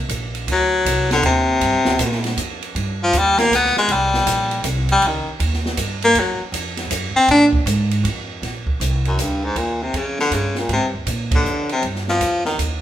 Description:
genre	jazz, small-group swing and bop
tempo	158 BPM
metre	3/4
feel	swing 65% on 8ths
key	Eb major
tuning	A4 = 440 Hz
part	upright bass	bass	0.0-12.8 s	Bb1 to Bb2	-23 LUFS	right 1 dB	none
part	open jazz drum kit	drums	0.1-12.7 s	hi-hat, kick drum, ride cymbal, snare drum	-24 LUFS	right 2 dB	none
part	bright baritone saxophone	melody	0.5-12.6 s	Gb2 to D4	-16 LUFS	left 1 dB	none
room	moderate large studio reverb, RT60 0.9 s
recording	band playing live in one room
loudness	-16 LUFS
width	side -11 dB against mid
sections	0.0-8.4 A section; 8.4-12.8 B section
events	baritone saxophone solo 0.0-8.4; band accent 11.3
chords	0.5 D7b9; 1.6 Gm7; 2.8 G5; 3.9 C5; 5.0 Dbsus2; 6.2 F5; 7.3 Bb5; 8.4 Bb69; 9.6 Ebadd9; 10.7 Absus2 (rootless); 11.8 Ebadd9

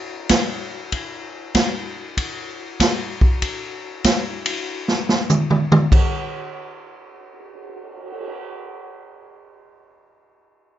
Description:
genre	jazz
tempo	96 BPM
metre	4/4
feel	swing 67% on 8ths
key	none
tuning	none
part	swinging big-band drum kit	drums	0.3-8.3 s	crash cymbal, cymbal swell, hi-hat, kick drum, ride cymbal, snare drum, toms	-19 LUFS	equal	none
room	moderate studio reverb, RT60 0.7 s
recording	nothing above 7.6 kHz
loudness	-18 LUFS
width	side -12 dB against mid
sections	0.9-5.9 A section; 5.9-8.4 B section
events	drum fill 4.7-5.9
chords	none

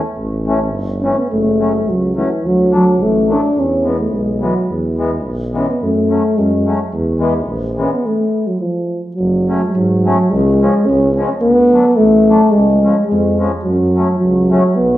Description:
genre	alpine folk, alpine dance band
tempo	107 BPM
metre	2/4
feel	straight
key	F# harmonic minor from 9.2 s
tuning	A4 = 436 Hz
part	dark euphonium	melody	0.0-15.0 s	E3 to D4	-13 LUFS	equal	none
part	warm tuba	bass	0.2-15.0 s	F#1 to G#2	-19 LUFS	equal	none
part	mellow accordion	accompaniment	0.5-14.6 s	E3 to D4	-21 LUFS	left 2 dB	none
room	wet recital hall reverb, RT60 1.6 s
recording	recorded in a church or concert hall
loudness	-12 LUFS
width	side -14 dB against mid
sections	0.0-9.2 A section; 9.2-15.0 B section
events	none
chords	0.0 A; 1.3 F#m; 2.4 D; 3.6 E; 5.8 F#m; 6.9 E; 8.1 N.C.; 9.2 F#m; 10.3 C#; 11.4 D; 12.5 C#; 13.7 F#m

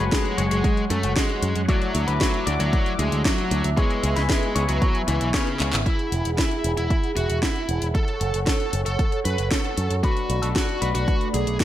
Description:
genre	italo disco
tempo	115 BPM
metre	4/4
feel	straight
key	F# minor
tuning	A4 = 440 Hz
part	bluesy overdriven lead guitar	melody	0.0-11.6 s	C#3 to B4	-27 LUFS	equal	distortion, ping-pong delay
part	warm analog pad	sustained chords	0.0-11.6 s	F#3 to D6	-30 LUFS	equal	chorus
part	electric guitar with an envelope filter	stabs	0.0-5.8, 10.0-11.6 s	G#3 to D5	-29 LUFS	left 4 dB	none
part	picked electric bass with an envelope filter	bass	0.0-11.6 s	E1 to F#2	-24 LUFS	equal	none
part	electronic kick drum	drums	0.1-11.6 s	none	-23 LUFS	equal	overdrive
part	house drum kit	drums	0.1-11.6 s	handclaps, hi-hat, snare drum	-28 LUFS	equal	overdrive, gated reverb
room	light reverb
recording	none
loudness	-20 LUFS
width	side -12 dB against mid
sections	0.0-5.9 A section; 5.9-11.6 B section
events	drum fill 5.6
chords	0.0 F#madd9; 1.7 Dadd9; 3.8 C#m7; 5.9 Eadd9; 7.9 F#m; 10.0 Bm7

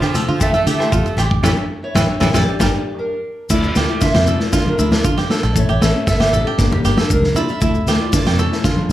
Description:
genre	highlife guitar band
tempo	116 BPM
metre	4/4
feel	straight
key	D harmonic minor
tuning	A4 = 439 Hz
part	fingerpicked steel-string acoustic guitar	melody	0.0-8.9 s	Bb3 to F5	-23 LUFS	equal	slapback echo, plate reverb
part	edgy tenor saxophone	second line	0.0-2.7 s	E3 to A3	-26 LUFS	right 4 dB	slapback echo
part	bluegrass banjo	arpeggios	0.0-8.9 s	C#4 to Bb4	-24 LUFS	right 4 dB	slapback echo, plate reverb
part	fingered electric bass	bass	0.0-8.9 s	E1 to D3	-18 LUFS	right 1 dB	none
part	vintage drum kit	drums	0.0-8.8 s	crash cymbal, hi-hat, kick drum, rim click, snare drum	-20 LUFS	equal	none
part	agogo bells	percussion	0.0-2.7 s	none	-28 LUFS	left 6 dB	none
part	maracas	percussion	0.0-8.9 s	none	-29 LUFS	left 7 dB	none
part	nylon-string guitar	accompaniment	0.1-8.9 s	E3 to A4	-24 LUFS	left 5 dB	none
part	congas	percussion	0.1-8.9 s	none	-23 LUFS	left 2 dB	none
room	light reverb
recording	studio reverb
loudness	-14 LUFS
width	side -14 dB against mid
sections	0.0-3.5 A section; 3.5-8.9 B section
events	band accent 1.4-3.5; drum fill 2.5-3.5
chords	0.0 Dmadd9; 1.4 A; 2.5 Gm; 3.5 Dmadd9; 5.6 A; 6.6 Gm; 7.6 Dmadd9

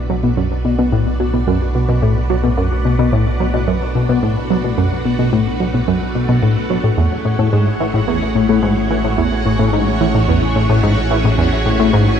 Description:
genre	ambient, sequencer-driven space music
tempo	109 BPM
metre	4/4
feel	straight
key	B dorian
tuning	A4 = 441 Hz
part	string machine, full ensemble	sustained chords	0.0-12.2 s	A3 to D5	-22 LUFS	right 1 dB	ensemble chorus
part	analog drone	bass	0.0-12.2 s	A1 to B1	-21 LUFS	right 1 dB	chorus
part	bubbling stepped-filter texture	texture	0.0-12.2 s	F#4 to F#5	-28 LUFS	right 2 dB	chorus, built-in reverb
part	tight sequenced synth	riff	0.1-12.1 s	E2 to F#3	-15 LUFS	left 1 dB	chorus, ping-pong delay
room	moderate scoring stage reverb, RT60 2.1 s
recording	none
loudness	-13 LUFS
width	side -8 dB against mid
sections	0.0-12.2 A section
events	fade-in on string machine 0.0-12.2; fade-in on synth texture 0.0-12.2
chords	0.0 Bm7; 6.8 Amaj7

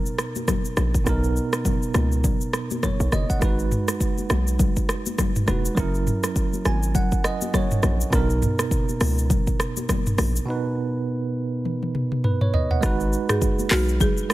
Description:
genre	afrobeats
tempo	102 BPM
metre	4/4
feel	swing 58% on 16ths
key	B major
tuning	A4 = 440 Hz
part	bell-like tine electric piano	accompaniment	0.0-14.3 s	B2 to G#5	-26 LUFS	right 3 dB	medium stereo tremolo
part	afro-pop drum kit	drums	0.1-14.3 s	handclaps, hi-hat, kick drum, rim click, shaker, toms	-23 LUFS	equal	none
part	congas	percussion	0.4-14.2 s	none	-30 LUFS	left 6 dB	none
part	hard-hitting 808-style bass	bass	0.8-14.0 s	E1 to C#2	-22 LUFS	equal	none
part	folk marimba with medium mallets	melody	13.3-14.3 s	F#4 to G#4	-26 LUFS	right 1 dB	tape echo
room	little or no reverb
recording	none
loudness	-20 LUFS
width	side -16 dB against mid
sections	0.0-3.4 A section; 3.4-12.8 B section; 12.8-14.3 C section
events	tine electric piano fill 6.4-8.1; drum fill 11.7-12.8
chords	0.0 Bmaj7; 3.4 G#m7; 5.8 F#7; 8.1 Bmaj7; 12.8 G#m7

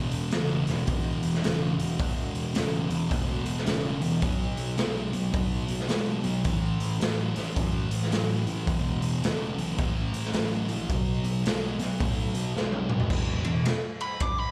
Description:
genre	blues rock power trio and southern rock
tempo	108 BPM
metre	4/4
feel	swing 62% on 8ths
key	E major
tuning	A4 = 442 Hz
part	thick fuzz guitar	riff	0.0-13.6 s	E2 to G#3	-32 LUFS	equal	distortion
part	fuzz picked electric bass	bass	0.0-13.6 s	E1 to A2	-34 LUFS	equal	overdrive
part	raw garage drum kit	drums	0.1-14.4 s	crash cymbal, hi-hat, kick drum, ride cymbal, snare drum, toms	-32 LUFS	equal	none
part	nasal lead guitar with a parked wah	melody	14.0-14.5 s	B5 to D6	-32 LUFS	equal	overdrive, slapback echo
room	light reverb, small room ambience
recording	live gig heard through the venue's PA, club ambience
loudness	-28 LUFS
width	mono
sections	0.0-13.1 A section; 13.1-14.5 B section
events	drum fill 12.6-13.1; lead electric guitar solo 13.1-14.5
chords	0.0 E5; 4.2 B5; 6.5 A5; 8.7 E5; 9.8 A5; 10.9 B5; 13.1 E5

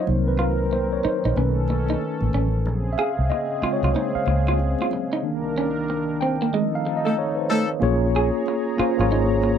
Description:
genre	R&B, neo-soul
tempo	93 BPM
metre	4/4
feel	swing 63% on 16ths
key	Bb minor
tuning	A4 = 441 Hz
part	electric guitar through a small old amp	second line	0.0-9.5 s	Ab3 to Ab4	-26 LUFS	right 4 dB	none
part	mellow tine electric piano	accompaniment	0.0-9.6 s	Db3 to G5	-24 LUFS	equal	medium stereo tremolo
part	warm analog pad	sustained chords	0.0-9.6 s	C2 to Bb5	-30 LUFS	left 1 dB	chorus
part	vintage muted fingered electric bass	bass	0.1-9.6 s	Ab1 to Db2	-22 LUFS	equal	none
part	congas	percussion	0.1-9.6 s	none	-34 LUFS	left 10 dB	none
part	warm horn section	stabs	7.0-7.7 s	F3 to A4	-25 LUFS	left 4 dB	none
room	light reverb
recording	dry, close 1970s-style studio recording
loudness	-20 LUFS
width	side -8 dB against mid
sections	0.0-7.8 A section; 7.8-9.6 B section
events	tine electric piano solo 0.0-7.8; band accent 5.2-7.8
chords	0.1 Cm7b5; 1.4 B9; 2.7 Bbm9 (rootless); 5.2 Cm9; 6.5 F7; 7.8 Bbm7

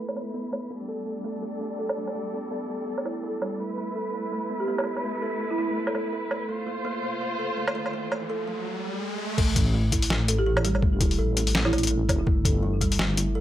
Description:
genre	half-time drum and bass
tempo	166 BPM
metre	4/4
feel	swing 57% on 16ths, half-time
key	A minor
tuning	A4 = 440 Hz
part	warm chamber cello section	sustained chords	0.0-8.6 s	G3 to C5	-32 LUFS	left 1 dB	vintage 12-bit sampler grit, sidechain pumping
part	kalimba	arpeggios	0.0-13.4 s	E3 to A4	-31 LUFS	right 2 dB	low-pass filter, digital delay
part	boom bap sampler-style drum kit	drums	0.1-13.3 s	crash cymbal, hi-hat, snare drum, woodblock	-27 LUFS	equal	low-pass filter on perc, low-pass filter on hats, low-pass filter on snare, low-pass filter on cymbals
part	folk marimba with medium hard mallets	melody	4.6-6.1, 10.4-12.2 s	E4 to A4	-31 LUFS	right 2 dB	digital delay
part	riser	sound effects	7.4-9.4 s	none	-34 LUFS	right 1 dB	none
part	deep soft wobble bass	bass	9.4-13.4 s	G1 to A1	-25 LUFS	left 1 dB	chorus, tube saturation
part	electronic kick drum	drums	9.4-12.9 s	none	-24 LUFS	left 1 dB	none
room	light reverb, digital ambience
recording	low-pass filter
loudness	-24 LUFS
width	side -12 dB against mid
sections	0.0-9.4 A section; 9.4-13.4 B section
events	filter sweep on drum 0.0-9.4; filter sweep on kalimba 0.0-9.4; filter sweep 0.0-9.4; riser 7.4-9.4; drop 9.4-13.4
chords	0.0 A5; 0.7 G; 3.6 A5; 6.5 Bbsus2; 9.4 A5; 12.3 G5

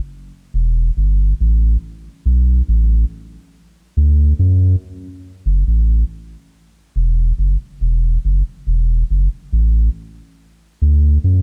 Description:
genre	reggae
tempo	70 BPM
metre	4/4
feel	straight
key	E minor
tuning	A4 = 439 Hz
part	warm sub bass	solo	0.5-11.4 s	E1 to F#2	-16 LUFS	equal	none
room	little or no reverb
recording	dark, warm production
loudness	-17 LUFS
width	mono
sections	0.0-3.5 A section; 3.5-11.4 B section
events	none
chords	none

